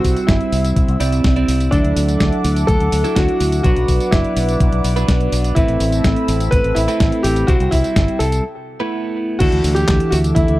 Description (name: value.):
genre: italo disco.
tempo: 125 BPM.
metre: 4/4.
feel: straight.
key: unclear.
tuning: A4 = 437 Hz.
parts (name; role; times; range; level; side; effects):
clear concert grand piano; melody; 0.0-10.6 s; D4 to B4; -20 LUFS; equal; tape echo.
warm analog pad; sustained chords; 0.0-10.6 s; C4 to E6; -25 LUFS; equal; chorus.
clean electric guitar; stabs; 0.0-10.6 s; E3 to D5; -22 LUFS; right 2 dB; phaser.
fingered electric bass with an envelope filter; bass; 0.0-10.6 s; F#1 to D2; -18 LUFS; equal; none.
detuned 8-bit digital drum machine; drums; 0.0-10.6 s; crash cymbal, handclaps, hi-hat, snare drum, tambourine; -23 LUFS; equal; studio ambience.
electronic kick drum; drums; 0.0-10.5 s; none; -17 LUFS; equal; studio ambience.
room: little or no reverb.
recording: dry, close 1970s-style studio recording.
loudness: -14 LUFS.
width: side -17 dB against mid.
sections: 0.0-9.4 A section; 9.4-10.6 B section.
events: break 8.4-9.4.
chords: 0.0 C; 1.7 Dadd9; 3.6 Bm; 5.6 Amadd9; 7.5 C; 8.4 Esus4; 9.4 Dadd9.